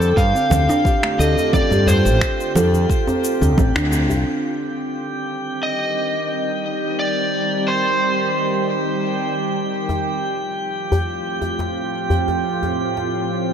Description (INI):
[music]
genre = organic downtempo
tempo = 88 BPM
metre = 4/4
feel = straight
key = C dorian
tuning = A4 = 440 Hz
[part]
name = overdriven slide guitar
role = melody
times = 0.0-9.3 s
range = A4 to F5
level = -22 LUFS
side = equal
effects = ping-pong delay
[part]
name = bowed-like drone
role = sustained chords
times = 0.1-13.5 s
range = A2 to F4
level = -25 LUFS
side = right 1 dB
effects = built-in reverb, sidechain pumping
[part]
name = fretless electric bass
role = bass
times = 0.0-4.2 s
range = A1 to G2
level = -18 LUFS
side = equal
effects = none
[part]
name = electronic cabasa, congas and finger snaps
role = drums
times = 0.0-4.2 s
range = none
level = -25 LUFS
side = right 3 dB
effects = low-pass filter on perc, small room ambience, low-pass filter on snare
[part]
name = djembe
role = percussion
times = 0.0-4.2, 9.9-13.1 s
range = none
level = -24 LUFS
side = left 2 dB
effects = none
[part]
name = drifting glass-harmonics texture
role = texture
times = 0.0-13.5 s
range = G4 to G5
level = -26 LUFS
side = right 2 dB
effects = chorus, built-in reverb
[part]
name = electronic kick drum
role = drums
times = 0.2-3.7 s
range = none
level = -19 LUFS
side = equal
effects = small room ambience
[part]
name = kalimba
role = arpeggios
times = 0.3-4.1 s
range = A3 to C5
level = -22 LUFS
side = equal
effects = digital delay
[sound]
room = moderate lush hall reverb, RT60 2.7 s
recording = none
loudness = -17 LUFS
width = side -8 dB against mid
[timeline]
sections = 0.0-4.3 A section; 4.3-13.5 B section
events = band accent 3.8-4.1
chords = 0.0 Dm7; 4.3 Cm; 9.7 F